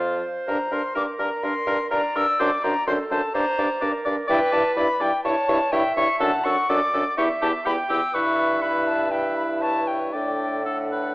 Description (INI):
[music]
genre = quick classical-period movement for wind quintet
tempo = 124 BPM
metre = 4/4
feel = rubato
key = unclear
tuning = A4 = 441 Hz
[part]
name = concert flute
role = melody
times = 0.0-11.1 s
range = F5 to E6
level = -25 LUFS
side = left 2 dB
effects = none
[part]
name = warm oboe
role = second line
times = 0.0-11.1 s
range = F4 to D5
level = -27 LUFS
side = left 1 dB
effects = none
[part]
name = clear French horn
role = accompaniment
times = 0.0-11.1 s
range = F3 to E4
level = -29 LUFS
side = equal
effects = none
[part]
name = warm clarinet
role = accompaniment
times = 0.0-11.1 s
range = A4 to G5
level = -27 LUFS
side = right 2 dB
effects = none
[part]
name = warm bassoon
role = bass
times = 0.0-11.1 s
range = E2 to A2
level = -28 LUFS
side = equal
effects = none
[sound]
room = moderate recital hall reverb, RT60 1.6 s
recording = AM radio sound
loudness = -20 LUFS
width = side -21 dB against mid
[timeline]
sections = 0.0-11.1 A section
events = none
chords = 0.5 Gm; 2.4 D7/F#; 3.3 Gm; 4.3 Em7/G; 5.3 A7/G; 6.2 D/F#; 7.2 Em; 8.1 Em/G; 10.1 D/A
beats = 0.00 | 0.48 0.95 1.43 1.91 | 2.40 2.87 3.35 3.82 | 4.30 4.77 5.25 5.73 | 6.21 6.70 7.18 7.66 | 8.14 8.63 9.12 9.62 | 10.14 10.66